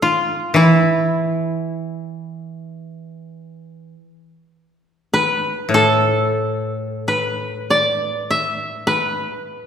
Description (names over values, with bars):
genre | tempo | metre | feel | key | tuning
japanese traditional, Japanese chamber music | free time | none | none | E in sen | A4 = 438 Hz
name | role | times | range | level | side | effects
koto | melody | 0.0-9.7 s | E4 to E5 | -19 LUFS | equal | none
koto | accompaniment | 0.5-9.1 s | A2 to E3 | -19 LUFS | equal | none
room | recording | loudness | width
wet recital hall reverb, RT60 1.8 s | recorded in a church or concert hall | -16 LUFS | side -8 dB against mid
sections
0.0-9.7 A section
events
none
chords
none